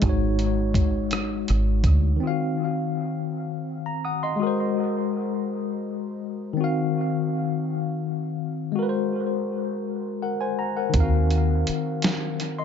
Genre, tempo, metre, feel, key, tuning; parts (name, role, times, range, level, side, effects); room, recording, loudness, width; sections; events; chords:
slow six-eight R&B; 55 BPM (dotted quarters); 6/8; straight; Eb dorian; A4 = 439 Hz
tine electric piano; accompaniment; 0.0-12.6 s; Eb3 to Eb6; -25 LUFS; left 4 dB; medium stereo tremolo, dub echo
deep dub fingered electric bass; bass; 0.0-2.2, 10.9-11.7 s; Ab1 to Eb2; -22 LUFS; right 1 dB
dusty soul sampler-style drum kit; drums; 0.0-2.0, 10.9-12.6 s; hi-hat, kick drum, rim click, snare drum; -24 LUFS; right 1 dB; vintage 12-bit sampler grit, dub echo
light reverb; echo-heavy mix, nothing above 7.7 kHz; -22 LUFS; side -7 dB against mid
0.0-2.2 A section; 2.2-12.6 B section
0.0 Ab7sus4; 2.2 Ebm69; 4.4 Ab9; 6.6 Ebm69; 8.8 Ab9; 10.9 Ebm69